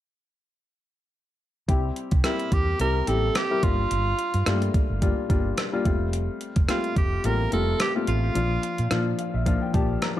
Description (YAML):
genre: 1980s-style pop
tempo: 108 BPM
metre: 4/4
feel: swing 55% on 16ths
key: C mixolydian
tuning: A4 = 439 Hz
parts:
  - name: dark baby grand piano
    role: accompaniment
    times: 1.7-10.2 s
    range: F3 to Bb5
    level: -27 LUFS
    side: left 4 dB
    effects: none
  - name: woody fretless electric bass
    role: bass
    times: 1.7-10.0 s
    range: F1 to Bb2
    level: -26 LUFS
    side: equal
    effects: wide subtle chorus
  - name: gated 80s digital drum machine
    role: drums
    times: 1.7-10.2 s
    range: hi-hat, kick drum, rim click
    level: -25 LUFS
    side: equal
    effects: overdrive
  - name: edgy alto saxophone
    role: melody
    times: 2.2-9.2 s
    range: E4 to Bb4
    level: -28 LUFS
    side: right 3 dB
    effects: ping-pong delay
room: light reverb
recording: dark, warm production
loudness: -22 LUFS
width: side -13 dB against mid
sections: 1.7-10.2 A section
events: grand piano fill 8.9-10.2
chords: 1.7 C; 3.6 Gm7; 5.9 Fadd9; 8.4 Bb